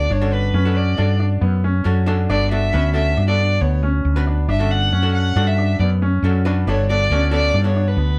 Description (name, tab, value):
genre	progressive instrumental, progressive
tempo	137 BPM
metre	5/4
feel	straight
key	G lydian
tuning	A4 = 441 Hz
part	dark violin	melody	0.0-8.2 s	B4 to F#5	-24 LUFS	equal	none
part	archtop guitar, miked and amplified	accompaniment	0.0-8.2 s	B3 to B4	-30 LUFS	equal	none
part	clear concert grand piano	arpeggios	0.0-8.2 s	B3 to D4	-28 LUFS	equal	none
part	woody fretless electric bass	bass	0.0-8.2 s	G1 to G2	-20 LUFS	equal	none
room	light reverb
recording	band playing live in one room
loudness	-18 LUFS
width	mono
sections	0.0-8.2 A section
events	none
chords	0.0 Gmaj9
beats	| 0.10 0.54 0.98 1.42 1.86 | 2.30 2.74 3.18 3.61 4.05 | 4.49 4.93 5.36 5.80 6.24 | 6.67 7.11 7.54 7.98